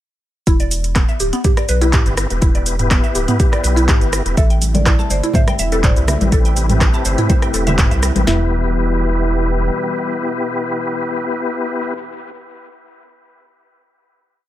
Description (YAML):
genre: afro house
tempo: 123 BPM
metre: 4/4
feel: straight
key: E minor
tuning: A4 = 440 Hz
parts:
  - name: mallet-like synth pluck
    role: arpeggios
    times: 0.5-8.5 s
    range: B3 to A5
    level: -23 LUFS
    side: equal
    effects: lush chorus, sidechain pumping, dub echo
  - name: round analog bass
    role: bass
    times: 0.5-9.7 s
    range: D1 to C2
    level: -18 LUFS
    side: equal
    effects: sidechain pumping
  - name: afro-pop drum kit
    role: drums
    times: 0.5-8.4 s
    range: kick drum, snare drum, toms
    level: -15 LUFS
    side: equal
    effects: studio reverb
  - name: afro-pop drum kit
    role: drums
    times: 0.5-8.2 s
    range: handclaps, hi-hat, rim click, shaker, toms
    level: -21 LUFS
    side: right 1 dB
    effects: studio reverb
  - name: tonewheel organ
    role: stabs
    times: 1.8-11.9 s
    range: B3 to B4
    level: -22 LUFS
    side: left 3 dB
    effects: chorus vibrato, fast rotary speaker, sidechain pumping, dub echo
  - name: buzzing marimba with medium mallets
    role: melody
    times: 4.4-11.9 s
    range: D5 to E5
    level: -27 LUFS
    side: equal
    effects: dub echo
  - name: warm analog pad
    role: sustained chords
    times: 4.4-11.9 s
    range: B2 to E4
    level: -26 LUFS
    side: right 1 dB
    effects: chorus, tremolo, sidechain pumping
  - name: congas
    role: percussion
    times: 4.6-8.2 s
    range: none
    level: -22 LUFS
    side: left 2 dB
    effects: none
room: little or no reverb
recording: none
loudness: -14 LUFS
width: side -13 dB against mid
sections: 0.5-8.3 drop; 8.3-12.2 final chord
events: drop 0.5-8.3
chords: 0.5 Em; 4.4 Am7; 8.3 Em